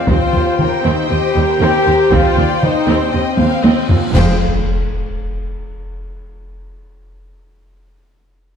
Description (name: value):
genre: cinematic, epic orchestral film score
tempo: 118 BPM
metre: 4/4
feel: straight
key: unclear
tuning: A4 = 440 Hz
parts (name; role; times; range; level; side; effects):
- warm symphonic violin section; melody; 0.0-4.4 s; G5; -27 LUFS; left 3 dB; none
- clear symphonic violin section; second line; 0.0-4.4 s; Bb4 to F5; -24 LUFS; left 2 dB; none
- warm symphonic viola section; accompaniment; 0.0-4.4 s; G3 to C5; -23 LUFS; equal; none
- clear woodwind section; sustained chords; 0.0-4.4 s; C4 to G5; -26 LUFS; equal; none
- warm French horn section; sustained chords; 0.0-4.4 s; C4 to G4; -17 LUFS; left 3 dB; none
- rich symphonic cello section; bass; 0.1-4.4 s; Eb2 to F2; -20 LUFS; right 3 dB; none
- rich symphonic double bass section; bass; 0.1-4.4 s; F1 to Eb2; -21 LUFS; right 4 dB; none
- taiko ensemble; drums; 0.1-4.3 s; none; -16 LUFS; equal; none
- cymbal swell, clash cymbals and concert bass drum; percussion; 0.1-5.1 s; none; -24 LUFS; equal; none
- cymbal swell and sub drop; sound effects; 3.6-6.2 s; none; -29 LUFS; left 1 dB; none
- timpani; percussion; 4.1-4.4 s; F2; -23 LUFS; left 2 dB; none
room: moderate scoring stage reverb, RT60 1.7 s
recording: dark, warm production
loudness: -12 LUFS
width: side -7 dB against mid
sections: 0.0-4.2 A section; 4.2-6.2 B section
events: drum fill 3.4-4.2; cymbal swell 3.6-4.2; band accent 4.2-4.7; impact 4.2-6.2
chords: 0.1 Cm/Eb; 4.2 Fm